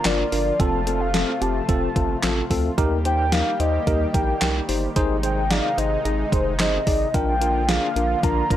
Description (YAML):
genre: synth-pop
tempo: 110 BPM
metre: 4/4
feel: straight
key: Eb major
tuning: A4 = 441 Hz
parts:
  - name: warm velvety synth lead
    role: melody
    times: 0.0-8.6 s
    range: C5 to Bb5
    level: -25 LUFS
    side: equal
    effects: chorus, tape echo
  - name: lush unison pad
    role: sustained chords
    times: 0.0-8.6 s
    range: C3 to G4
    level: -30 LUFS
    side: equal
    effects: chorus
  - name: gated 80s digital drum machine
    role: drums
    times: 0.0-8.6 s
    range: handclaps, hi-hat, kick drum, snare drum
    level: -24 LUFS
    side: equal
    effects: gated reverb, gated reverb snare, overdrive
  - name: tine electric piano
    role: accompaniment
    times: 0.1-8.6 s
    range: C4 to Eb5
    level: -25 LUFS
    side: left 1 dB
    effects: medium stereo tremolo
  - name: round analog bass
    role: bass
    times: 0.1-8.6 s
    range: F1 to Eb2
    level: -25 LUFS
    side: equal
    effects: none
room: little or no reverb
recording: dry, gritty hardware recording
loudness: -19 LUFS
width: side -12 dB against mid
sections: 0.0-8.6 A section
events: none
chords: 0.0 Bb; 0.6 F; 2.8 Eb; 5.0 Ab; 7.1 Bb